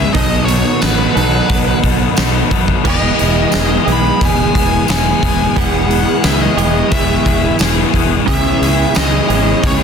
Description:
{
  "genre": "rock, shoegaze and dream pop",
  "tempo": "89 BPM",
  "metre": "4/4",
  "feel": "straight",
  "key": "E major",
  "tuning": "A4 = 440 Hz",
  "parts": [
    { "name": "nasal lead guitar with a parked wah", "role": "melody", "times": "0.0-9.8 s", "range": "B4 to B5", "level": "-20 LUFS", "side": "equal", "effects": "overdrive, analog delay" },
    { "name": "warbly tape-like pad", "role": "sustained chords", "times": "0.0-9.8 s", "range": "E4 to E6", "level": "-24 LUFS", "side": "left 1 dB", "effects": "chorus, built-in reverb" },
    { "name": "crunchy overdriven guitar", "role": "riff", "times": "0.0-9.8 s", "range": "B2 to A4", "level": "-18 LUFS", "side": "left 12 dB", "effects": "lush chorus" },
    { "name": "direct-recorded clean electric guitar", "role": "riff", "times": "0.0-9.8 s", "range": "B2 to A4", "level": "-19 LUFS", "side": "right 12 dB", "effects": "reverse reverb" },
    { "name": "fuzz fingered electric bass", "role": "bass", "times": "0.0-9.8 s", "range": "E1 to F#2", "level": "-18 LUFS", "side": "equal", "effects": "overdrive" },
    { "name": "huge arena drum kit", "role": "drums", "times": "0.1-9.8 s", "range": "crash cymbal, hi-hat, kick drum, snare drum", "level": "-16 LUFS", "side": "equal", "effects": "none" },
    { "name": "tambourine", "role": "percussion", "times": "0.8-9.1 s", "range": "none", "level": "-28 LUFS", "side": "right 9 dB", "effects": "none" }
  ],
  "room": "light reverb, small room ambience",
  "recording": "dense, heavily limited modern master",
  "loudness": "-11 LUFS",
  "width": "side -6 dB against mid",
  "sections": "0.0-9.8 A section",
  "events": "none",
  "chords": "0.2 B7; 2.9 Emaj7; 8.3 C#m7"
}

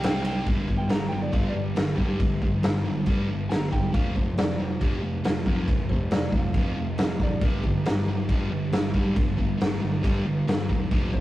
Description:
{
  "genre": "garage rock duo or trio",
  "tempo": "138 BPM",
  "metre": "4/4",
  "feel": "straight",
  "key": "unclear",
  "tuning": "A4 = 441 Hz",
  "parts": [
    { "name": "electric slide guitar", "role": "melody", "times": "0.0-11.2 s", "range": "F4 to Bb5", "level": "-36 LUFS", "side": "equal", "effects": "none" },
    { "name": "thick fuzz guitar", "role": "riff", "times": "0.0-11.2 s", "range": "F2 to C4", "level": "-29 LUFS", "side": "right 1 dB", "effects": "distortion" },
    { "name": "fuzz picked electric bass", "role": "bass", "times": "0.0-11.2 s", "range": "E1 to G2", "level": "-30 LUFS", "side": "equal", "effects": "overdrive" },
    { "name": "raw garage drum kit", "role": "drums", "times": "0.0-11.2 s", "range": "crash cymbal, kick drum, ride cymbal, snare drum", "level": "-25 LUFS", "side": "equal", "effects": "none" }
  ],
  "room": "light reverb",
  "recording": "rough rehearsal-room recording, tube saturation",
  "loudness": "-22 LUFS",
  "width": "side -15 dB against mid",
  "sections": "0.5-11.2 A section",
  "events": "none",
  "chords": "0.5 G5; 3.9 F5; 7.4 G5"
}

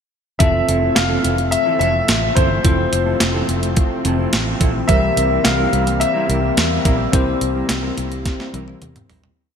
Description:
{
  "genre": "1980s-style pop",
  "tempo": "107 BPM",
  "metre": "4/4",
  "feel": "straight",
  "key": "F major",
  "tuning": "A4 = 441 Hz",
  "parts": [
    { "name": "clear concert grand piano", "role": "melody", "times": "0.4-8.8 s", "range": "C5 to F5", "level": "-20 LUFS", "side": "left 2 dB", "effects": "wide subtle chorus, shimmer reverb, ping-pong delay" },
    { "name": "bell-like tine electric piano", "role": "accompaniment", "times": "0.4-9.4 s", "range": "E3 to C5", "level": "-24 LUFS", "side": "left 4 dB", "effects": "analog chorus, shimmer reverb" },
    { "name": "lush unison pad", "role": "sustained chords", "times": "0.4-9.3 s", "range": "C3 to C4", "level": "-27 LUFS", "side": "right 1 dB", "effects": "chorus, shimmer reverb" },
    { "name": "mellow electric guitar", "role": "riff", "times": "0.4-9.3 s", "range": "E3 to Bb4", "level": "-25 LUFS", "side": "right 3 dB", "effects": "lush chorus, shimmer reverb" },
    { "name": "vintage muted fingered electric bass", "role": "bass", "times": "0.4-9.3 s", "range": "F1 to E2", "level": "-22 LUFS", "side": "right 1 dB", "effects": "none" },
    { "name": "clean 12-bit digital drum machine", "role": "drums", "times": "0.4-9.4 s", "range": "hi-hat, kick drum, snare drum, toms", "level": "-18 LUFS", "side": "right 1 dB", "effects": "overdrive, gated reverb" }
  ],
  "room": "wet plate reverb, RT60 2.8 s",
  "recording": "bright 1980s-style digital production",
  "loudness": "-15 LUFS",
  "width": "side -7 dB against mid",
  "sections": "0.4-9.4 verse",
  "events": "fade-out 7.1-9.4; drum fill 8.3-9.4",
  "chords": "0.4 Fmaj7; 4.9 C7"
}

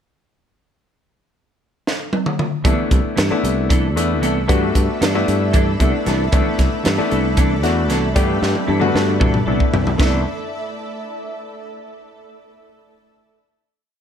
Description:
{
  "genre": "electric jazz fusion",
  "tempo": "229 BPM (eighths)",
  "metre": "7/8",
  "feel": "straight",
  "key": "C lydian",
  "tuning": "A4 = 438 Hz",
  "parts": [
    { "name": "crisp fusion drum kit", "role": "drums", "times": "1.9-10.1 s", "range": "crash cymbal, hi-hat, kick drum, snare drum, toms", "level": "-19 LUFS", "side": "equal", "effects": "none" },
    { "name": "warm baby grand piano", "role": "accompaniment", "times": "2.6-10.2 s", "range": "A3 to G4", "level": "-21 LUFS", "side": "left 3 dB", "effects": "none" },
    { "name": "clean electric guitar", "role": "stabs", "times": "2.6-10.2 s", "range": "E3 to A4", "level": "-24 LUFS", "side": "right 1 dB", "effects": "analog chorus" },
    { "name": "sustaining fretless electric bass", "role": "bass", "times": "2.6-10.2 s", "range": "C2 to G2", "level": "-20 LUFS", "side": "equal", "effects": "none" },
    { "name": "granular cloud pad", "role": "sustained chords", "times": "3.6-10.2 s", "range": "A4 to B5", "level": "-28 LUFS", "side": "equal", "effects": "built-in reverb" }
  ],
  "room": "light reverb",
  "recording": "none",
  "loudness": "-15 LUFS",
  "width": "side -8 dB against mid",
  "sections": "0.8-2.6 pickup bar; 2.6-10.0 groove; 10.0-11.8 final chord",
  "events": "drum fill 1.9-2.6, 8.4-10.0",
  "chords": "0.8 N.C.; 2.6 Cmaj13"
}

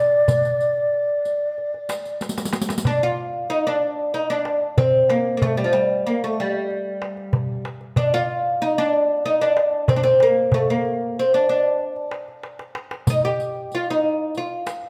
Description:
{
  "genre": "Arabic maqam ensemble",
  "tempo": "94 BPM",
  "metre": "4/4",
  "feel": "straight",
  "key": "D maqam kurd",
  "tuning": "A4 = 441 Hz",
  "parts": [
    { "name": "oud", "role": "melody", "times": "0.0-14.7 s", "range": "F3 to G4", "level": "-22 LUFS", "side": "equal", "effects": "none" },
    { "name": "breathy mellow low ney", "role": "second line", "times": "0.0-2.2 s", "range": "D5", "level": "-22 LUFS", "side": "equal", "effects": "none" },
    { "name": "darbuka", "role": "percussion", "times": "0.1-14.9 s", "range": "none", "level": "-26 LUFS", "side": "equal", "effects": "none" },
    { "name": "riq", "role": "percussion", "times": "0.3-2.8, 13.1-14.8 s", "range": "none", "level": "-31 LUFS", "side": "equal", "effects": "none" }
  ],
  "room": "wet large studio reverb, RT60 1.3 s",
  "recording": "band playing live in one room",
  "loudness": "-21 LUFS",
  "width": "mono",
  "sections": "0.0-2.9 A section; 2.9-14.9 B section",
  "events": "drum fill 2.2-2.9, 12.4-13.1",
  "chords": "none"
}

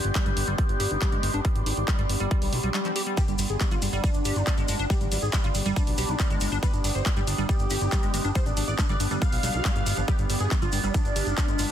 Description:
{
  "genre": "psychedelic trance",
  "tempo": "139 BPM",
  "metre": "4/4",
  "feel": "straight",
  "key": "G major",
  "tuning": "A4 = 440 Hz",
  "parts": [
    { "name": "overtone-sweeping drone", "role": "sustained chords", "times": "0.0-11.7 s", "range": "B3 to D5", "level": "-33 LUFS", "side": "right 1 dB", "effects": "chorus, built-in reverb, sidechain pumping" },
    { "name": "fat analog bass", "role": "bass", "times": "0.0-11.7 s", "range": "G1 to B1", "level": "-28 LUFS", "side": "equal", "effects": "none" },
    { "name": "big-room dance drum kit", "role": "drums", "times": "0.0-11.7 s", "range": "handclaps, hi-hat", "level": "-32 LUFS", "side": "equal", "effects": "overdrive" },
    { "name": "ethereal airy pad", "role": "texture", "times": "0.0-11.7 s", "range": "D4 to D6", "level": "-37 LUFS", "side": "right 1 dB", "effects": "ensemble chorus, built-in reverb, sidechain pumping" },
    { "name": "liquid acid bass", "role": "riff", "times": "0.2-11.7 s", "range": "F3 to G4", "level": "-34 LUFS", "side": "moving between left 7 dB and right 6 dB", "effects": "chorus, auto-pan, sidechain pumping, ping-pong delay" },
    { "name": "electronic kick drum", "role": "drums", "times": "0.2-11.5 s", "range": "none", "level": "-25 LUFS", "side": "equal", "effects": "overdrive" },
    { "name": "swell", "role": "sound effects", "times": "2.5-3.2 s", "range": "none", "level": "-36 LUFS", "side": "left 6 dB", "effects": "none" },
    { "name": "wide unison lead", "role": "melody", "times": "3.2-11.7 s", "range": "G3 to F5", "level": "-32 LUFS", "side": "left 1 dB", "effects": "phaser, cassette tape, sidechain pumping, ping-pong delay" },
    { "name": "maracas", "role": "percussion", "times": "3.2-11.7 s", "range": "none", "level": "-38 LUFS", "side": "left 4 dB", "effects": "none" }
  ],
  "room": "digital ambience",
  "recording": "dense, heavily limited modern master",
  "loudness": "-23 LUFS",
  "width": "side -10 dB against mid",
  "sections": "0.0-11.7 A section",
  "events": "none",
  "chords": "0.0 G5"
}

